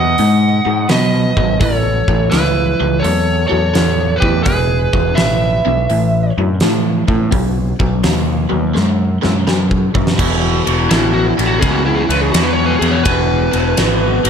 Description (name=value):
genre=blues rock power trio and southern rock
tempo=84 BPM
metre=4/4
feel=swing 66% on 8ths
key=E major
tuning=A4 = 444 Hz
part: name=lead guitar through a small cranked amp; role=melody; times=0.0-6.3, 10.9-14.3 s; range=E4 to F#5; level=-18 LUFS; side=right 2 dB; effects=overdrive, slapback echo
part: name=lightly driven lead guitar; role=second line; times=0.0-6.3 s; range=E4 to D#5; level=-24 LUFS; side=right 3 dB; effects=slapback echo
part: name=overdriven electric guitar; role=riff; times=0.0-14.3 s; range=E2 to G#3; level=-17 LUFS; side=left 1 dB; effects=phaser
part: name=growling picked electric bass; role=bass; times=0.0-14.3 s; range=E1 to B2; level=-17 LUFS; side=equal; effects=overdrive
part: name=huge arena drum kit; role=drums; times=0.2-14.3 s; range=crash cymbal, hi-hat, kick drum, ride cymbal, snare drum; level=-18 LUFS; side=equal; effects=none
room=light reverb, small room reverb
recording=none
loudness=-12 LUFS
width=side -7 dB against mid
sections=0.0-10.2 A section; 10.2-14.3 B section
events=drum fill 8.8-10.2; lead electric guitar solo 10.2-14.3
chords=0.0 B; 1.6 A; 4.5 E; 5.9 A5; 7.3 B; 10.2 E5